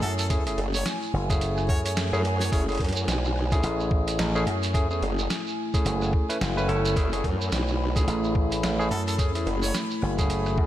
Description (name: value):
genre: glitch hop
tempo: 108 BPM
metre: 4/4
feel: swing 59% on 16ths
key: F# minor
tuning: A4 = 443 Hz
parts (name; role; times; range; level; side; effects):
- bright harmonica; melody; 0.0-2.6, 8.9-9.8 s; A4 to C#5; -36 LUFS; left 1 dB; ping-pong delay
- dark analog pad; sustained chords; 0.0-10.7 s; A3 to B5; -32 LUFS; equal; chorus, sidechain pumping
- slap bass with an envelope filter; bass; 0.0-10.7 s; F#1 to F#2; -27 LUFS; equal; none
- boom bap sampler-style drum kit; drums; 0.0-10.6 s; hi-hat, rim click, snare drum; -34 LUFS; equal; none
- shekere; percussion; 0.2-10.6 s; none; -36 LUFS; right 5 dB; none
- barky tine electric piano; stabs; 0.3-10.7 s; A3 to B4; -30 LUFS; equal; overdrive, vintage 12-bit sampler grit, sidechain pumping, ping-pong delay
- electronic kick drum; drums; 0.3-10.7 s; none; -25 LUFS; equal; none
- formant-sweep wobble bass; bass; 0.6-9.7 s; F#1 to F#2; -26 LUFS; equal; chorus
room: light reverb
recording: none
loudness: -23 LUFS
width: side -13 dB against mid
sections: 0.0-10.7 A section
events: none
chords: 0.0 F#m9